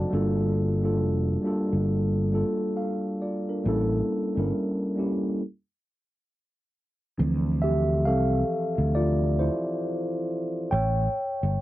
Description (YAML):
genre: R&B, neo-soul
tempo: 68 BPM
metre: 4/4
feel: swing 61% on 16ths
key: D minor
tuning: A4 = 439 Hz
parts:
  - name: mellow tine electric piano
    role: accompaniment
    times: 0.0-11.6 s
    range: E3 to A5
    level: -26 LUFS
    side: equal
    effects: wide subtle chorus
  - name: sustaining fretless electric bass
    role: bass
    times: 0.0-11.6 s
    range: F1 to D2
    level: -25 LUFS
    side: equal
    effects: lush chorus
room: little or no reverb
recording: dry, close 1970s-style studio recording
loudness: -24 LUFS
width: side -16 dB against mid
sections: 0.0-7.2 A section; 7.2-11.6 B section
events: stop 5.4-7.2; tine electric piano solo 7.2-11.6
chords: 0.1 Gm9; 3.6 A7b9; 7.2 Dm9; 10.7 A7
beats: | 0.12 1.00 1.88 2.76 | 3.65 4.53 5.41 6.29 | 7.17 8.06 8.94 9.82 | 10.70 11.59